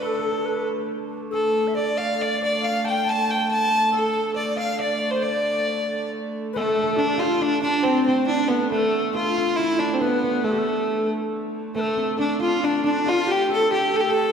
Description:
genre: medieval.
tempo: 138 BPM.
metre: 3/4.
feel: straight.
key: D dorian.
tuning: A4 = 438 Hz.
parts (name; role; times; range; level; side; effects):
clear fiddle; melody; 0.0-14.3 s; A3 to A5; -22 LUFS; equal; none.
concert harp; second line; 0.0-14.3 s; A3 to A5; -29 LUFS; right 2 dB; slapback echo.
tenor recorder; second line; 0.0-14.3 s; C4 to A5; -27 LUFS; left 4 dB; none.
rich hurdy-gurdy; drone; 0.0-14.3 s; D3 to A3; -30 LUFS; right 3 dB; none.
room: wet concert hall reverb, RT60 2.0 s.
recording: heard from further back in the room.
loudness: -20 LUFS.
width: side -7 dB against mid.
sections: 0.0-6.5 A section; 6.5-14.3 A section.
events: none.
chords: none.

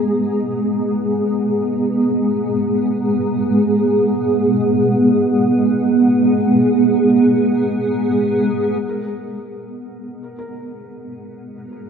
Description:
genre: ambient.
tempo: free time.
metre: none.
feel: none.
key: G# minor.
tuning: A4 = 438 Hz.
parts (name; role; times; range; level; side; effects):
granular cloud pad; sustained chords; 0.0-11.9 s; G#3 to A#5; -15 LUFS; right 1 dB; built-in reverb, ensemble chorus.
felt-muted upright piano; arpeggios; 8.9-11.9 s; A#4; -38 LUFS; left 2 dB; lush chorus, analog delay.
room: wet lush hall reverb, RT60 2.7 s.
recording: dreamy mix soaked in reverb.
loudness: -14 LUFS.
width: side -7 dB against mid.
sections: 0.0-8.8 A section; 8.8-11.9 B section.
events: filter sweep on ambient pad 0.0-8.8.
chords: 0.0 G#madd9; 8.8 G#m9.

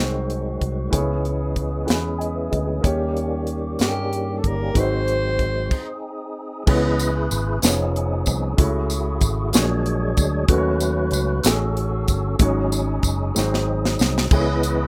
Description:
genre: slow gospel.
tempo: 63 BPM (dotted quarters).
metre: 6/8.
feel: straight.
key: C# minor from 6.7 s.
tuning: A4 = 442 Hz.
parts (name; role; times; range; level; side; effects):
warm upright piano; accompaniment; 0.0-14.9 s; G#2 to G#5; -29 LUFS; equal; plate reverb.
tonewheel organ; sustained chords; 0.0-14.9 s; D#3 to D#5; -29 LUFS; equal; slow rotary speaker, overdrive, chorus vibrato, plate reverb.
fingered electric bass; bass; 0.0-14.9 s; E#1 to G2; -26 LUFS; equal; none.
tight funk drum kit; drums; 0.3-14.8 s; crash cymbal, hi-hat, kick drum, snare drum; -23 LUFS; equal; none.
breathy alto saxophone; melody; 3.8-6.1 s; G4 to B#4; -28 LUFS; equal; plate reverb.
tambourine; percussion; 7.0-14.9 s; none; -30 LUFS; equal; none.
room: moderate small room reverb, RT60 0.5 s.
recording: rough home demo mix.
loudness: -21 LUFS.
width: mono.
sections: 0.0-6.7 A section; 6.7-14.9 B section.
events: stop 5.7-6.7; tonewheel organ solo 6.7-14.9; drum fill 13.4-14.3.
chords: 0.0 G#7; 0.9 C#m7; 2.8 D#7; 4.8 G#7; 6.7 C#m7; 7.6 C#7/E#; 8.6 F#m7/C#; 9.5 A#7alt; 10.5 D#m7b5; 12.4 G#7sus4; 13.4 G#7; 14.3 C#m7.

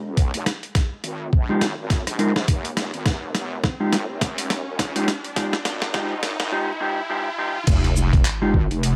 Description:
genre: glitch hop.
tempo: 104 BPM.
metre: 4/4.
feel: swing 58% on 16ths.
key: F minor.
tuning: A4 = 436 Hz.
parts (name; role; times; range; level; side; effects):
wobble bass; bass; 0.0-9.0 s; F1 to Bb1; -29 LUFS; equal; chorus, high-pass filter.
riser and sub drop; sound effects; 0.9-9.0 s; none; -32 LUFS; equal; none.
boom bap sampler-style drum kit; drums; 0.2-9.0 s; crash cymbal, handclaps, hi-hat, rim click, shaker, snare drum; -28 LUFS; equal; none.
electronic kick drum; drums; 0.2-8.7 s; none; -22 LUFS; equal; none.
mellow electric guitar; stabs; 1.5-8.6 s; Ab3 to Bb4; -27 LUFS; equal; vintage 12-bit sampler grit, sidechain pumping, low-pass filter, tape echo.
room: light reverb.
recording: vinyl crackle, high-pass filter.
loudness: -23 LUFS.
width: mono.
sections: 0.0-7.7 A section; 7.7-9.0 B section.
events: build-up 0.0-7.7; drum fill 0.0-6.5; filter sweep on clean electric guitar 0.0-7.7; filter sweep 0.0-7.7; riser 0.9-7.7; drop 7.7-9.0; impact 7.7-9.0.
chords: 0.0 Fm9; 7.7 Fm.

